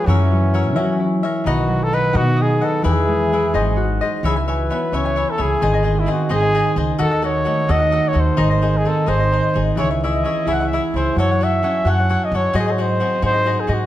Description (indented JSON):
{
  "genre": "mexican folk, mariachi",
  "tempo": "87 BPM (dotted quarters)",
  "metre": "6/8",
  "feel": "straight",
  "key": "C# harmonic minor from 4.2 s",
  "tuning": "A4 = 440 Hz",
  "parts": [
    { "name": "mellow trumpet", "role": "melody", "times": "0.0-13.9 s", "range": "C#4 to F#5", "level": "-21 LUFS", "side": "equal", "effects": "none" },
    { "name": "cavaquinho", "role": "accompaniment", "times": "0.0-13.9 s", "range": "D#4 to B5", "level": "-24 LUFS", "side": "left 3 dB", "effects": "none" },
    { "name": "concert harp", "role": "arpeggios", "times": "0.0-13.9 s", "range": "D#3 to D#5", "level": "-22 LUFS", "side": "equal", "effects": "none" },
    { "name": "upright bass", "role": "bass", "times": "0.1-13.8 s", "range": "G#1 to F#3", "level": "-20 LUFS", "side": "equal", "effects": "none" }
  ],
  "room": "moderate recital hall reverb, RT60 1.7 s",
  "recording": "close, detailed microphones",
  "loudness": "-16 LUFS",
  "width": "side -13 dB against mid",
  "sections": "0.0-4.2 A section; 4.2-13.9 B section",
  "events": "none",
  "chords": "0.1 F#7; 1.4 B; 2.8 E; 3.5 G#7; 4.2 C#m7; 5.6 G#; 7.0 D#dim; 8.4 G#; 9.8 C#m; 11.2 F#m; 12.5 G#7"
}